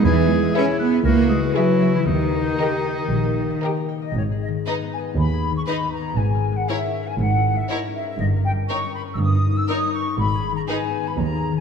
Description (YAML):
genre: cinematic, playful, whimsical film cue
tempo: 119 BPM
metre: 4/4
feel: straight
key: G# minor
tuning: A4 = 441 Hz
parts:
  - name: clear clarinet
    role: second line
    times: 0.0-3.6 s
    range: D#4 to C#5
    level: -29 LUFS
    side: left 2 dB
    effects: none
  - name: clear oboe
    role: second line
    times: 0.0-3.9 s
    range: D#4 to G#4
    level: -31 LUFS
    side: equal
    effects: none
  - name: dark French horn section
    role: sustained chords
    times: 0.0-3.9 s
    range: E4 to B4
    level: -27 LUFS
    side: left 4 dB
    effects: none
  - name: concert harp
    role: arpeggios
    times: 0.0-11.6 s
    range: G2 to B5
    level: -25 LUFS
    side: left 8 dB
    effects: none
  - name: clear studio double bass section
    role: bass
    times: 0.0-11.6 s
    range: G1 to E2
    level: -23 LUFS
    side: right 3 dB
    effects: none
  - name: rich studio cello section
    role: bass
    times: 0.0-11.6 s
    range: D#2 to C#4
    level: -23 LUFS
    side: right 4 dB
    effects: none
  - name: warm bassoon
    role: accompaniment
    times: 0.5-3.8 s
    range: D#3 to E3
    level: -36 LUFS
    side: right 1 dB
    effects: none
  - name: rich studio violin section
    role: melody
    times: 0.6-10.8 s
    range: B4 to E5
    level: -35 LUFS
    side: left 2 dB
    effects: none
  - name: rich studio violin section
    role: second line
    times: 0.6-10.8 s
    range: G#4 to B4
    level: -32 LUFS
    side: left 6 dB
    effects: none
  - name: small flute group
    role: second line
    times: 0.6-11.6 s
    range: C#5 to E6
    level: -27 LUFS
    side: left 2 dB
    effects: none
  - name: bright studio viola section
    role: accompaniment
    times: 0.6-10.8 s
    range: D#4 to G#4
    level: -33 LUFS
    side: right 1 dB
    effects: none
room: moderate scoring stage reverb, RT60 2.1 s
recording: none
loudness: -19 LUFS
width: side -6 dB against mid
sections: 0.0-4.2 A section; 4.2-11.6 B section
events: none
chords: 0.1 E; 1.0 C#m7; 2.1 D#; 4.2 G#m; 6.2 A#m7b5/G#; 8.2 D#7/G; 10.2 G#m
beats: | 0.05 0.55 1.05 1.55 | 2.08 2.60 3.11 3.63 | 4.15 4.66 5.16 5.67 | 6.17 6.68 7.18 7.69 | 8.19 8.69 9.19 9.69 | 10.19 10.68 11.18